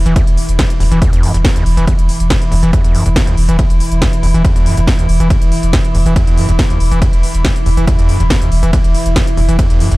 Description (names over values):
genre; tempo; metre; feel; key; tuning
driving peak-time techno; 140 BPM; 4/4; straight; unclear; A4 = 440 Hz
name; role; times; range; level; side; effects
warm sub bass; bass; 0.0-10.0 s; E1; -14 LUFS; equal; sidechain pumping, low-pass filter
metallic inharmonic drone; drone; 0.0-10.0 s; E3 to E4; -20 LUFS; right 1 dB; chorus, built-in reverb, sidechain pumping
overdriven acid bass; riff; 0.1-9.9 s; D#2 to E3; -17 LUFS; equal; distortion, sidechain pumping, digital delay
techno drum kit; drums; 0.1-10.0 s; hi-hat, ride cymbal, snare drum; -22 LUFS; equal; sidechain pumping on hats, sidechain pumping on cymbals
electronic kick drum; drums; 0.2-9.7 s; none; -14 LUFS; equal; none
room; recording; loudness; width
little or no reverb; dark, warm production; -10 LUFS; side -20 dB against mid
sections
0.0-10.0 A section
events
none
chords
0.0 Esus2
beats
| 0.16 0.59 1.02 1.45 | 1.88 2.30 2.73 3.16 | 3.59 4.02 4.45 4.88 | 5.30 5.73 6.16 6.59 | 7.02 7.45 7.88 8.30 | 8.73 9.16 9.59